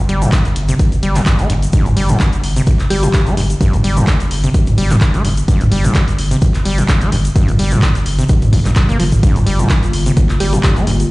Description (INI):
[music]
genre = acid house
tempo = 128 BPM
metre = 4/4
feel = swing 54% on 16ths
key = G minor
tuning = A4 = 438 Hz
[part]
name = overdriven acid bass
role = riff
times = 0.1-10.9 s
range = G1 to Bb3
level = -18 LUFS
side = equal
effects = sidechain pumping, digital delay
[part]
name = saturated sub bass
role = bass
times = 0.1-11.1 s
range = G1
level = -17 LUFS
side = equal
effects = sidechain pumping
[part]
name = punchy analog drum machine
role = drums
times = 0.1-11.1 s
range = handclaps, hi-hat, toms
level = -19 LUFS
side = equal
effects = none
[part]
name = egg shaker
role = percussion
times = 0.2-11.1 s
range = none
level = -32 LUFS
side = left 2 dB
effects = none
[part]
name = electronic kick drum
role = drums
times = 0.3-10.7 s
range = none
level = -13 LUFS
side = equal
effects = none
[part]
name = mallet-like synth pluck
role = melody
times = 2.9-3.1, 10.4-10.6 s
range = G4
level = -23 LUFS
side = left 1 dB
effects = chorus, tape echo
[part]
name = warbly tape-like pad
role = sustained chords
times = 9.4-11.1 s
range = D3 to F4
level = -21 LUFS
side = equal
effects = chorus, built-in reverb, sidechain pumping
[sound]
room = light reverb, digital ambience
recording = played on a big sound system in a bare room, stone room reverb, nothing above 10.5 kHz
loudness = -11 LUFS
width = side -21 dB against mid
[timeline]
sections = 0.0-11.1 A section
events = drum fill 8.5-9.2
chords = 0.0 Gm7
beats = 0.33 0.79 1.26 | 1.73 2.20 2.67 3.14 | 3.61 4.08 4.54 5.01 | 5.48 5.95 6.42 6.89 | 7.36 7.83 8.29 8.76 | 9.23 9.70 10.17 10.64 | 11.11